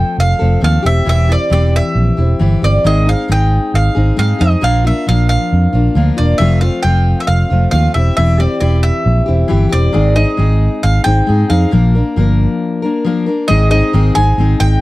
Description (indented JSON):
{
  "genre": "folk rock and heartland rock",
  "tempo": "135 BPM",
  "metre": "4/4",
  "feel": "straight",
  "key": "unclear",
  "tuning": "A4 = 443 Hz",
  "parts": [
    { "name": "bowl-back mandolin", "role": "melody", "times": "0.0-14.8 s", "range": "D5 to Ab5", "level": "-18 LUFS", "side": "right 1 dB", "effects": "none" },
    { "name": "picked steel-string acoustic guitar", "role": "accompaniment", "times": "0.0-14.8 s", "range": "F2 to Bb4", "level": "-17 LUFS", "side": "left 4 dB", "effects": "none" },
    { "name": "fingered electric bass", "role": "bass", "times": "0.0-14.8 s", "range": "E1 to Ab2", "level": "-12 LUFS", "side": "right 1 dB", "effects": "none" }
  ],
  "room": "little or no reverb",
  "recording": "dry, close 1970s-style studio recording",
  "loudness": "-10 LUFS",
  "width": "side -18 dB against mid",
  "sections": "0.0-13.5 A section; 13.5-14.8 B section",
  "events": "break 12.6-13.5",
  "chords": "0.0 F; 0.9 C/E; 2.8 Ab; 4.6 Bb; 6.4 F; 7.9 C/E; 9.9 Ab; 11.7 Bb; 13.5 Ab",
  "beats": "0.19 0.63 | 1.07 1.52 1.96 2.40 | 2.85 3.29 3.73 4.18 | 4.62 5.06 5.51 5.95 | 6.39 6.84 7.28 7.72 | 8.17 8.61 9.06 9.50 | 9.95 10.39 10.84 11.28 | 11.72 12.17 12.61 13.06 | 13.50 13.95 14.39"
}